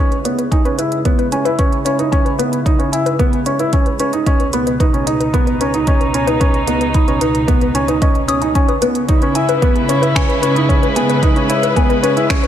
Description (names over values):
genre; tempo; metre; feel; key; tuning
piano and strings electronica; 112 BPM; 4/4; straight; C# minor; A4 = 441 Hz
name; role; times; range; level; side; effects
dark chamber string section; sustained chords; 0.0-12.5 s; C#2 to B4; -20 LUFS; equal; sidechain pumping, low-pass filter
warbly dusty pluck; arpeggios; 0.0-12.5 s; B4 to D#6; -21 LUFS; left 4 dB; chorus, sidechain pumping, digital delay
warm upright piano; riff; 0.0-12.5 s; B3 to E4; -17 LUFS; right 2 dB; digital delay
organic electronic drum kit; drums; 0.1-12.5 s; finger snaps, hi-hat; -25 LUFS; right 3 dB; overdrive
electronic kick drum; drums; 0.5-12.4 s; none; -15 LUFS; equal; none
room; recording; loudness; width
moderate recital hall reverb, RT60 1.6 s, small room ambience; none; -13 LUFS; side -10 dB against mid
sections
0.0-12.5 A section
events
build-up 0.0-12.5; filter sweep on string section 0.0-12.5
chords
0.0 C#m7; 4.3 G#m/C#; 8.6 C#m7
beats
0.52 1.05 1.59 | 2.12 2.66 3.20 3.73 | 4.27 4.80 5.34 5.87 | 6.41 6.95 7.48 8.02 | 8.55 9.09 9.62 10.16 | 10.70 11.23 11.77 12.30